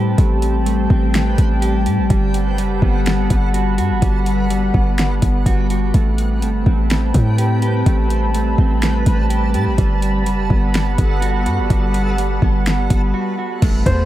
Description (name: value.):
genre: hip hop, atmospheric cloud-rap.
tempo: 125 BPM.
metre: 4/4.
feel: half-time.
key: unclear.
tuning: A4 = 435 Hz.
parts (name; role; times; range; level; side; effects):
warbly tape-like pad; sustained chords; 0.0-14.1 s; G3 to B5; -22 LUFS; left 2 dB; chorus, built-in reverb, sidechain pumping.
mellow electric guitar; arpeggios; 0.0-14.1 s; G3 to G4; -24 LUFS; right 6 dB; analog delay.
warm 808-style bass; bass; 0.0-14.1 s; F#1 to A2; -18 LUFS; equal; none.
backwards swelling texture; texture; 0.0-14.1 s; B3 to B5; -29 LUFS; left 1 dB; built-in reverb.
smooth R&B drum kit; drums; 0.2-14.0 s; crash cymbal, hi-hat, kick drum, snare drum; -18 LUFS; equal; none.
impact; sound effects; 13.6-14.1 s; none; -26 LUFS; left 1 dB; none.
felt-muted upright piano; melody; 13.9-14.1 s; C5; -19 LUFS; left 1 dB; none.
room: little or no reverb.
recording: echo-heavy mix.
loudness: -14 LUFS.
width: side -13 dB against mid.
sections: 0.0-13.6 A section.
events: break 13.1-13.6; impact 13.6-14.1.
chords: 0.0 Am9; 2.1 Gmaj9; 5.9 Am9; 9.8 Gmaj9.